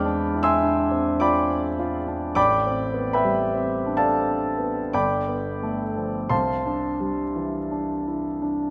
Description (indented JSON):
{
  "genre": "classical, impressionist solo piano",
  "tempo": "41-53 BPM",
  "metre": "3/4",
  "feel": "rubato",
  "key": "C major",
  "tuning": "A4 = 440 Hz",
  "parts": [
    { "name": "clear concert grand piano", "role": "solo", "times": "0.0-8.7 s", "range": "G1 to F6", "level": "-24 LUFS", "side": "equal", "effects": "none" }
  ],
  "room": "moderate scoring stage reverb, RT60 1.7 s",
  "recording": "none",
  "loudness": "-24 LUFS",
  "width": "mono",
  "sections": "0.0-8.7 A section",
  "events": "none",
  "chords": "0.0 Fm6/E; 2.4 Am11; 4.9 G9; 6.3 Cadd9"
}